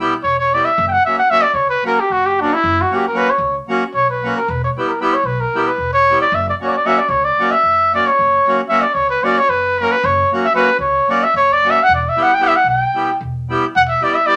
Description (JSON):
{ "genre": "balkan folk, Balkan wedding band", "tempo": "227 BPM (eighths)", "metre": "7/8", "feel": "straight", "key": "F# phrygian dominant", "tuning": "A4 = 440 Hz", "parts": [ { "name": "accordion", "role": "accompaniment", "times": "0.0-14.4 s", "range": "F#3 to G4", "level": "-22 LUFS", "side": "equal", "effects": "none" }, { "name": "clear trumpet", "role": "melody", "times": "0.2-14.4 s", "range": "D4 to G5", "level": "-16 LUFS", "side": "equal", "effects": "none" }, { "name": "upright bass", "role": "bass", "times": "0.2-13.9 s", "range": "E1 to C#2", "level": "-29 LUFS", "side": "equal", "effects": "none" } ], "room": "wet studio reverb, RT60 0.5 s", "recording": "none", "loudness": "-15 LUFS", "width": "mono", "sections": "0.0-14.4 A section", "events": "trumpet solo 0.0-14.4", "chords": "0.0 Em; 0.8 F#; 4.5 Em; 6.3 F#; 11.9 Em", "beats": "0.26 0.52 | 0.79 1.05 1.32 1.58 1.85 2.11 2.38 | 2.64 2.90 3.17 3.44 3.70 3.96 4.23 | 4.49 4.76 5.02 5.29 5.55 5.82 6.08 | 6.35 6.61 6.88 7.14 7.41 7.67 7.93 | 8.20 8.46 8.73 8.99 9.26 9.52 9.79 | 10.05 10.32 10.58 10.85 11.11 11.38 11.64 | 11.90 12.17 12.43 12.70 12.96 13.23 13.49 | 13.76 14.02 14.29" }